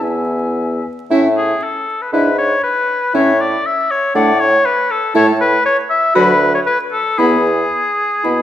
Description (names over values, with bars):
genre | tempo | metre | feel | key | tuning
quick classical-period movement for wind quintet | 118 BPM | 4/4 | uneven beats | A major | A4 = 439 Hz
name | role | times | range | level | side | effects
silver concert flute | melody | 0.0-8.4 s | E5 to B5 | -21 LUFS | left 5 dB | none
warm oboe | second line | 0.0-8.4 s | G#4 to E5 | -15 LUFS | left 2 dB | none
clear clarinet | accompaniment | 0.0-8.4 s | D4 to F#4 | -21 LUFS | right 4 dB | none
warm French horn | accompaniment | 0.0-8.4 s | F#3 to D4 | -21 LUFS | equal | none
warm bassoon | bass | 0.0-8.4 s | D2 to B2 | -19 LUFS | right 1 dB | none
room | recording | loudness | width
moderate scoring stage reverb, RT60 1.7 s | vinyl crackle | -12 LUFS | side -11 dB against mid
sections
0.0-1.1 A section; 1.1-8.4 B section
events
none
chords
0.0 E; 1.1 A; 2.1 E7/G#; 3.1 A; 4.1 D/A; 5.1 A5; 6.2 Bm/D; 7.2 E